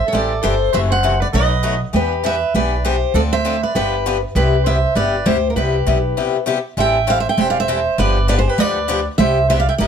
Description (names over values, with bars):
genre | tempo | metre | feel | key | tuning
acoustic string swing (jazz manouche) | 199 BPM | 4/4 | swing 58% on 8ths | C major | A4 = 440 Hz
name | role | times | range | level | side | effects
picked steel-string acoustic guitar | melody | 0.0-9.9 s | Bb4 to G5 | -19 LUFS | equal | none
mellow soprano saxophone | second line | 0.0-9.9 s | F4 to E5 | -24 LUFS | right 7 dB | none
picked swing-style acoustic guitar | accompaniment | 0.1-9.9 s | B2 to A4 | -22 LUFS | left 6 dB | none
upright bass | bass | 0.1-9.9 s | E1 to E2 | -19 LUFS | right 1 dB | none
room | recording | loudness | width
moderate studio reverb, RT60 0.6 s | none | -15 LUFS | side -7 dB against mid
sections
0.0-6.8 A section; 6.8-9.9 B section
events
break 6.2-6.8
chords
0.0 Am7; 0.7 F#m7b5; 1.3 B7; 1.9 Em7; 3.1 Dm7; 3.8 G7; 4.4 Cmaj7; 6.8 Am7; 8.0 G7; 9.2 Cmaj7